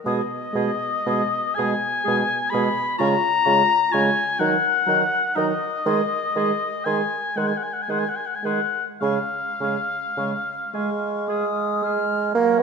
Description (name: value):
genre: classical, slow romantic movement for wind quintet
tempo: 34-43 BPM (dotted quarters)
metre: 6/8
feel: rubato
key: unclear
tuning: A4 = 440 Hz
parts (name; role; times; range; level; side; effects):
- warm French horn; accompaniment; 0.0-12.6 s; F#3 to G#3; -30 LUFS; right 2 dB; none
- concert flute; melody; 0.1-12.6 s; F#5 to E#6; -32 LUFS; left 7 dB; none
- warm oboe; second line; 0.1-12.6 s; C#5 to B5; -22 LUFS; left 5 dB; none
- clear clarinet; accompaniment; 0.1-12.6 s; D#4 to A#4; -30 LUFS; right 7 dB; none
- dark bassoon; bass; 0.1-12.6 s; B2 to B3; -26 LUFS; right 4 dB; none
room: wet recital hall reverb, RT60 1.7 s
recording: minimal, uncompressed stereo recording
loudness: -20 LUFS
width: side -5 dB against mid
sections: 0.0-12.3 A section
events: none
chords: 0.1 G#m/B; 3.0 C#; 4.4 D#m; 5.9 G#/D#; 9.0 C#